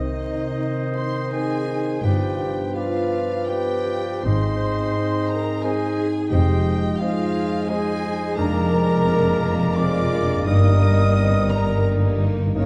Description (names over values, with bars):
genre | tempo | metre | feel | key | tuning
classical, slow romantic movement for symphony orchestra | 86 BPM | 3/4 | rubato | Eb major from 8.4 s | A4 = 439 Hz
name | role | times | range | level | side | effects
rich chamber violin section | melody | 0.0-12.7 s | Db5 to Eb6 | -38 LUFS | equal | none
bright clarinet | second line | 0.0-12.7 s | Bb4 to C5 | -34 LUFS | equal | none
mellow hollow concert flute | second line | 0.0-12.7 s | Db5 to Eb6 | -34 LUFS | equal | none
warm oboe | second line | 0.0-12.7 s | D5 to Eb5 | -36 LUFS | equal | none
mellow bassoon | accompaniment | 0.0-12.7 s | Eb3 to Ab3 | -32 LUFS | equal | none
rich chamber viola section | accompaniment | 0.0-12.7 s | Db4 to Eb5 | -32 LUFS | equal | none
dark French horn section | sustained chords | 0.0-12.7 s | Ab3 to F4 | -30 LUFS | equal | none
concert harp | arpeggios | 0.0-12.7 s | F2 to D5 | -29 LUFS | equal | none
clear chamber cello section | bass | 0.0-12.7 s | F2 to C3 | -25 LUFS | equal | none
dark chamber double bass section | bass | 0.0-12.7 s | F1 to C2 | -27 LUFS | equal | none
rich chamber violin section | second line | 0.6-12.7 s | Bb3 to F4 | -34 LUFS | equal | none
room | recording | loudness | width
moderate scoring stage reverb, RT60 2.1 s | dark, warm production, vinyl crackle | -21 LUFS | mono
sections
0.0-12.7 A section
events
none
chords
0.0 Cm; 2.0 G7; 4.3 Ab; 6.3 Fm7; 8.4 Bb7/F; 10.5 Eb/G